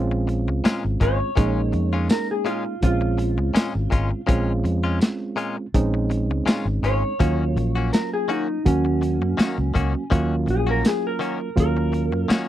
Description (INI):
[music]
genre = straight-eighth soul blues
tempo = 82 BPM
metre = 4/4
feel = swing 56% on 16ths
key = Bb minor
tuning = A4 = 436 Hz
[part]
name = overdriven reed electric piano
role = accompaniment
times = 0.0-12.5 s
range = Gb3 to Gb4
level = -26 LUFS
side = right 4 dB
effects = none
[part]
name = vintage muted fingered electric bass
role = bass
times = 0.0-12.3 s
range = Ab1 to Gb2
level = -23 LUFS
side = left 1 dB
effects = none
[part]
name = direct-recorded clean electric guitar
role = stabs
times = 0.1-12.5 s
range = Bb2 to Gb4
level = -28 LUFS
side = left 5 dB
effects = none
[part]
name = crunchy breakbeat drum kit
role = drums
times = 0.3-12.5 s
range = hi-hat, kick drum, snare drum, tambourine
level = -19 LUFS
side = left 1 dB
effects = none
[part]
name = clean lap steel guitar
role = melody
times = 1.0-12.3 s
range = Db4 to Db5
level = -26 LUFS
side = equal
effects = none
[sound]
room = little or no reverb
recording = dry, close 1970s-style studio recording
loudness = -20 LUFS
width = side -12 dB against mid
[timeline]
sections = 0.0-12.5 A section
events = electric slide guitar solo 0.0-12.5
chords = 0.0 Bbm7; 7.2 Ebm7